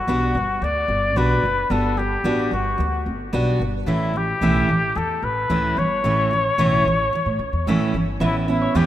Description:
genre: acoustic pop.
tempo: 111 BPM.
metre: 4/4.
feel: straight.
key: unclear.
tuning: A4 = 440 Hz.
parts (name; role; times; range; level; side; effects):
breathy trumpet; melody; 0.0-8.9 s; E4 to D5; -22 LUFS; left 2 dB; ping-pong delay.
picked steel-string acoustic guitar; accompaniment; 0.0-8.9 s; A2 to F#4; -22 LUFS; right 1 dB; none.
upright bass; bass; 0.1-8.9 s; F#1 to A2; -25 LUFS; equal; none.
twelve-string electric guitar; arpeggios; 8.2-8.7 s; C#5 to E5; -28 LUFS; right 4 dB; lush chorus.
room: moderate lush hall reverb, RT60 2.5 s.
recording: rough home demo mix.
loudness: -18 LUFS.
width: side -12 dB against mid.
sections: 0.0-8.2 A section.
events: none.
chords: 0.0 Gmaj7; 3.9 A; 8.2 Aadd9.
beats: 0.08 0.62 1.16 | 1.71 2.25 2.79 3.33 | 3.87 4.42 4.96 5.50 | 6.04 6.58 7.13 7.67 | 8.21 8.75.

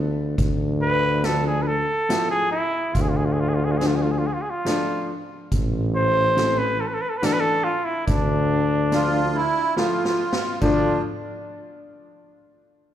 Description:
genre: klezmer.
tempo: 70 BPM.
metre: 3/4.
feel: straight.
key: D dorian sharp4.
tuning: A4 = 440 Hz.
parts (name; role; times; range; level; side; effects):
breathy tuba; bass; 0.0-11.0 s; A1 to D2; -23 LUFS; equal; none.
street-band drum kit; drums; 0.4-10.8 s; hi-hat, kick drum, snare drum, splash cymbal; -27 LUFS; equal; none.
warm cornet; melody; 0.8-11.0 s; D4 to C5; -24 LUFS; equal; slapback echo.
warm upright piano; accompaniment; 1.2-11.0 s; E3 to F4; -27 LUFS; left 1 dB; slapback echo.
accordion; second line; 8.9-11.0 s; E4 to F4; -24 LUFS; right 3 dB; light tremolo tuning, slapback echo.
room: light reverb, small room reverb.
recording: live gig heard through the venue's PA, club reverb.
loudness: -19 LUFS.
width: side -10 dB against mid.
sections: 0.0-10.6 A section; 10.6-12.9 B section.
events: drum fill 9.8-10.6.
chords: 0.4 Dm; 5.5 Am; 8.1 Dm.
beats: | 0.38 1.24 2.10 | 2.95 3.81 4.66 | 5.52 6.37 7.22 | 8.07 8.93 9.78 | 10.63.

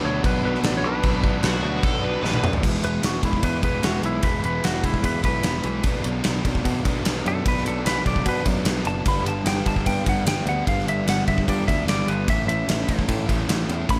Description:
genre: classic rock.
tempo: 149 BPM.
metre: 4/4.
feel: straight.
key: B minor.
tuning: A4 = 442 Hz.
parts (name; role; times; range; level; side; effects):
clean lap steel guitar; melody; 0.0-14.0 s; E4 to B5; -30 LUFS; equal; none.
biting overdriven guitar; riff; 0.0-2.4 s; B2 to D4; -33 LUFS; equal; none.
raw garage guitar; riff; 0.0-14.0 s; G2 to E4; -32 LUFS; equal; overdrive.
sludgy distorted guitar; riff; 0.0-14.0 s; G2 to E4; -31 LUFS; equal; overdrive.
picked electric bass; bass; 0.0-14.0 s; E1 to B2; -30 LUFS; equal; none.
gated 80s drum kit; drums; 0.2-14.0 s; crash cymbal, kick drum, ride cymbal, snare drum, toms; -26 LUFS; equal; none.
nasal lead guitar with a parked wah; second line; 1.4-2.5 s; F#4 to B4; -32 LUFS; equal; overdrive.
room: light reverb, studio ambience.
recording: none.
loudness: -23 LUFS.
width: mono.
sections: 0.0-2.6 A section; 2.6-14.0 B section.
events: drum fill 2.2-2.6; electric slide guitar solo 2.6-14.0.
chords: 0.0 Bm; 2.6 E; 5.8 Bm; 9.1 G; 12.3 A.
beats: 0.23 0.63 | 1.03 1.43 1.83 2.23 | 2.63 3.03 3.43 3.83 | 4.23 4.64 5.04 5.44 | 5.84 6.24 6.65 7.05 | 7.45 7.85 8.26 8.66 | 9.06 9.46 9.87 10.27 | 10.67 11.07 11.47 11.88 | 12.28 12.68 13.08 13.48 | 13.89.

